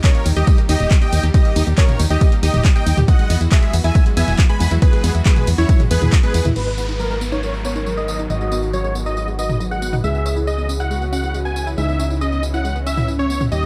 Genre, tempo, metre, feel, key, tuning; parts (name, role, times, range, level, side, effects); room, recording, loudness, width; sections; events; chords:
uplifting trance; 138 BPM; 4/4; straight; G# minor; A4 = 440 Hz
dense compressed supersaw; melody; 0.0-13.7 s; E4 to B5; -27 LUFS; equal; sidechain pumping, low-pass filter, tape echo
plucky unison lead; second line; 0.0-6.5 s; B4 to B5; -31 LUFS; equal; sidechain pumping, digital delay
clear studio string section; sustained chords; 0.0-13.7 s; A#2 to G4; -34 LUFS; equal; sidechain pumping, low-pass filter
analog pluck; arpeggios; 0.0-13.7 s; F#3 to G4; -30 LUFS; equal; chorus, cassette tape, sidechain pumping, digital delay
electronic kick drum; drums; 0.0-6.2 s; -16 LUFS; equal
punchy analog drum machine; drums; 0.0-13.7 s; crash cymbal, handclaps, hi-hat, ride cymbal, tambourine, toms; -28 LUFS; equal; sidechain pumping on hats, sidechain pumping on toms, sidechain pumping on perc, sidechain pumping on cymbals
solid FM bass; bass; 0.3-13.7 s; D#1 to E2; -22 LUFS; equal; sidechain pumping
warm velvety synth lead; second line; 6.6-13.7 s; C#4 to B4; -29 LUFS; equal; chorus, digital delay
downlifter; sound effects; 6.6-10.0 s; -37 LUFS; equal
little or no reverb; dark, warm production; -17 LUFS; mono
0.0-6.6 A section; 6.6-13.7 B section
drop 0.0-6.6; band accent 6.1; filter sweep on supersaw synth 6.6-13.7; filter sweep on string section 6.6-13.7
0.0 D#; 3.1 Eadd9; 6.6 G#m7; 10.0 C#m7